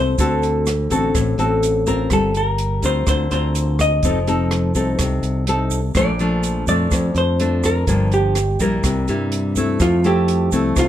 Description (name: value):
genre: bossa nova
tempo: 125 BPM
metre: 4/4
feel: straight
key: F major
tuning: A4 = 440 Hz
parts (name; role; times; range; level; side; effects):
- vintage hollow-body jazz guitar; melody; 0.0-10.9 s; F4 to Eb5; -22 LUFS; equal; plate reverb
- nylon-string guitar; accompaniment; 0.0-10.9 s; F2 to Bb4; -20 LUFS; left 2 dB; none
- modern bright fingered electric bass; bass; 0.0-10.9 s; F1 to G2; -21 LUFS; right 1 dB; none
- open jazz drum kit; drums; 0.2-10.9 s; hi-hat, kick drum, rim click; -24 LUFS; right 1 dB; none
- egg shaker; percussion; 0.2-10.9 s; none; -32 LUFS; right 8 dB; none
room: light reverb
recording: none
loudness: -16 LUFS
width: side -11 dB against mid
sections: 0.0-10.9 A section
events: none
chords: 0.2 D7; 2.1 Gm7; 4.0 F7; 6.0 Bbmaj7; 7.9 Gm7; 8.8 C7; 9.8 Fmaj9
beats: | 0.19 0.67 1.15 1.63 | 2.11 2.59 3.07 3.55 | 4.03 4.51 5.00 5.48 | 5.96 6.44 6.92 7.40 | 7.88 8.36 8.84 9.32 | 9.80 10.29 10.77